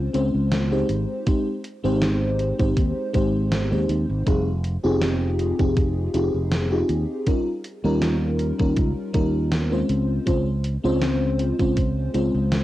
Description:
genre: vaporwave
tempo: 80 BPM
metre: 4/4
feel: swing 54% on 16ths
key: unclear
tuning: A4 = 440 Hz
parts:
  - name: FM electric piano with soft pad layer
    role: accompaniment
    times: 0.0-12.6 s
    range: G3 to C5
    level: -23 LUFS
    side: left 1 dB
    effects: analog chorus, analog delay
  - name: fingered electric bass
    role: bass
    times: 0.0-12.6 s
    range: F1 to Eb2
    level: -24 LUFS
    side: equal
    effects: none
  - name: gated 80s digital drum machine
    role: drums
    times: 0.1-12.6 s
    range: hi-hat, snare drum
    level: -28 LUFS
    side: equal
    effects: gated reverb, gated reverb snare
  - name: electronic kick drum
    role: drums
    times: 1.3-11.9 s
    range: none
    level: -23 LUFS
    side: equal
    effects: none
room: light reverb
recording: home recording on cassette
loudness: -20 LUFS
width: side -15 dB against mid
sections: 0.0-12.6 A section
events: none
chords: 0.0 Dbmaj7; 0.9 Abmaj7; 4.3 Fm9; 7.3 Eb9; 9.9 Dbmaj7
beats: 0.52 | 1.27 2.02 2.77 3.52 | 4.27 5.02 5.77 6.52 | 7.27 8.02 8.77 9.52 | 10.27 11.02 11.77 12.52

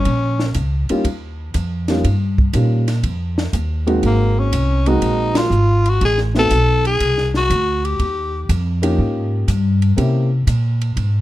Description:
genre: jazz, small-group swing and bop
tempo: 121 BPM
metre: 4/4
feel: swing 68% on 8ths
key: Eb mixolydian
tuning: A4 = 438 Hz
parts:
  - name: growling tenor saxophone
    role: melody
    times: 0.0-0.6, 4.1-8.5 s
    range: Bb3 to A4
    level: -19 LUFS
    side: left 1 dB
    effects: plate reverb
  - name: upright bass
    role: bass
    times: 0.0-11.2 s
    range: Ab1 to C3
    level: -17 LUFS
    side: equal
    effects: none
  - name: compact cocktail drum kit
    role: drums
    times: 0.1-11.1 s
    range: hi-hat, kick drum, ride cymbal, snare drum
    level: -23 LUFS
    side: equal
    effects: none
  - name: warm baby grand piano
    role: accompaniment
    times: 0.9-10.3 s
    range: G3 to G4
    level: -20 LUFS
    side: equal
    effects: none
room: light reverb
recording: dark, warm production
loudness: -15 LUFS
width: side -15 dB against mid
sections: 0.0-11.2 A section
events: band accent 5.3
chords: 0.0 Eb9; 4.0 Ab9; 6.0 Am6; 8.0 Eb9; 10.0 C7b9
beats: | 0.06 0.55 1.05 1.54 | 2.04 2.54 3.03 3.53 | 4.02 4.52 5.02 5.51 | 6.01 6.50 7.00 7.50 | 7.99 8.49 8.98 9.48 | 9.97 10.47 10.96

